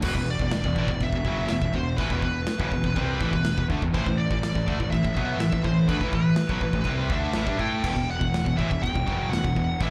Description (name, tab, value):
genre	heavy metal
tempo	123 BPM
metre	4/4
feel	straight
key	E minor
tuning	A4 = 440 Hz
part	high-gain lead guitar	melody	0.0-9.9 s	B4 to G5	-33 LUFS	equal	distortion, slapback echo
part	dark studio string section	sustained chords	0.0-9.9 s	E3 to B4	-45 LUFS	equal	none
part	distorted electric guitar	riff	0.0-9.9 s	E2 to A4	-34 LUFS	equal	overdrive, slapback echo
part	raw garage guitar	riff	0.0-9.9 s	E2 to A4	-38 LUFS	equal	none
part	tight distorted guitar	riff	0.0-9.9 s	E2 to A4	-32 LUFS	equal	distortion, slapback echo
part	fuzz picked electric bass	bass	0.0-9.9 s	E1 to A2	-30 LUFS	equal	overdrive
part	big rock drum kit	drums	0.0-9.9 s	china cymbal, crash cymbal, kick drum, snare drum	-32 LUFS	equal	none
room	small room reverb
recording	live gig heard through the venue's PA, club reverb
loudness	-25 LUFS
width	mono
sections	0.0-9.9 A section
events	none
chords	0.0 Em; 3.9 A5; 7.8 Em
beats	| 0.04 0.53 1.01 1.50 | 1.99 2.48 2.96 3.45 | 3.94 4.43 4.92 5.41 | 5.89 6.38 6.87 7.36 | 7.84 8.33 8.82 9.31 | 9.80